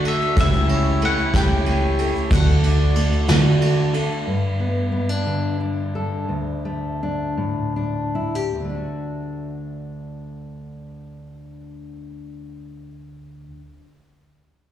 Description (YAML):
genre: indie folk with a building arrangement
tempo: 49-62 BPM (dotted quarters)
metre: 6/8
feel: straight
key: D major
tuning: A4 = 440 Hz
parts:
  - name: bowl-back mandolin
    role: melody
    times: 0.0-3.6 s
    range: E5 to G5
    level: -25 LUFS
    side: left 2 dB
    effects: slapback echo
  - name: warm cello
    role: second line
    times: 0.0-3.9 s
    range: D4 to F#4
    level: -30 LUFS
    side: right 3 dB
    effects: slapback echo, tape echo
  - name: picked steel-string acoustic guitar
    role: accompaniment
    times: 0.0-4.3 s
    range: C#3 to G4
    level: -26 LUFS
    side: left 7 dB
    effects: slapback echo
  - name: pedal harmonium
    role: sustained chords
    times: 0.0-4.2 s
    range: F#4 to A5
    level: -31 LUFS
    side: right 2 dB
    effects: none
  - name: warm upright piano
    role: arpeggios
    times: 0.0-4.3 s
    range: A3 to A4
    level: -27 LUFS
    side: right 4 dB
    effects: slapback echo
  - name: fingered electric bass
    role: bass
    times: 0.0-4.1 s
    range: C#2 to D3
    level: -19 LUFS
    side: right 1 dB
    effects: none
  - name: vintage brush drum kit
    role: drums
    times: 0.0-4.1 s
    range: kick drum, ride cymbal, snare drum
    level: -25 LUFS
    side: equal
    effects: none
  - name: egg shaker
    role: percussion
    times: 0.2-3.4 s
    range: none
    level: -44 LUFS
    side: right 3 dB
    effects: none
  - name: fingerpicked steel-string acoustic guitar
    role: accompaniment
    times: 4.3-13.7 s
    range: D2 to A4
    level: -25 LUFS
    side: left 1 dB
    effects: slapback echo
room: little or no reverb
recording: live gig heard through the venue's PA, recital hall reverb, small room ambience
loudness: -18 LUFS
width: side -11 dB against mid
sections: 0.0-4.3 A section; 4.3-8.5 B section; 8.5-13.5 C section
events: slowing down 4.3-8.5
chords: 0.4 A7/C#; 2.3 D; 4.3 G; 6.3 D5; 8.5 D